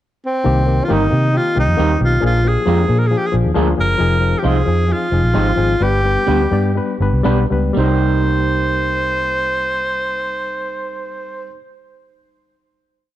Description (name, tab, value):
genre	soul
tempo	115-136 BPM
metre	4/4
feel	straight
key	C minor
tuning	A4 = 440 Hz
part	breathy tenor saxophone	melody	0.3-11.5 s	C4 to C5	-19 LUFS	equal	tape echo
part	barky reed electric piano	accompaniment	0.4-11.6 s	Eb3 to D5	-21 LUFS	left 5 dB	overdrive, fast tremolo
part	vintage muted fingered electric bass	bass	0.5-11.5 s	F1 to C3	-17 LUFS	equal	none
part	electric guitar through a small old amp	stabs	0.9-11.6 s	G3 to C5	-24 LUFS	right 7 dB	none
room	little or no reverb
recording	dark, warm production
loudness	-14 LUFS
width	side -13 dB against mid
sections	0.0-0.5 pickup bar; 0.5-7.8 verse; 7.8-11.9 final chord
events	slowing down 4.0-7.8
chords	0.5 Cm7; 2.2 Bb7; 4.0 Fm7; 5.8 G; 7.8 Cm7